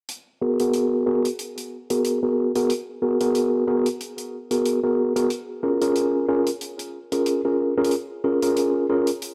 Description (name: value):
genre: glitch hop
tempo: 92 BPM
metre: 4/4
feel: swing 57% on 16ths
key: G# dorian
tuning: A4 = 440 Hz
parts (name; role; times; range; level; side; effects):
- hi-hat; drums; 0.1-9.3 s; none; -36 LUFS; equal; none
- mellow tine electric piano; stabs; 0.4-9.1 s; B3 to A#4; -23 LUFS; equal; low-pass filter, delay
room: light reverb, small room ambience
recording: none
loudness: -23 LUFS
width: mono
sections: 0.1-9.3 A section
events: filter sweep on tine electric piano 0.1-9.3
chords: 0.1 G#m9; 5.3 A#m7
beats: | 0.09 0.74 1.39 2.04 | 2.70 3.35 4.00 4.65 | 5.31 5.96 6.61 7.26 | 7.91 8.57 9.22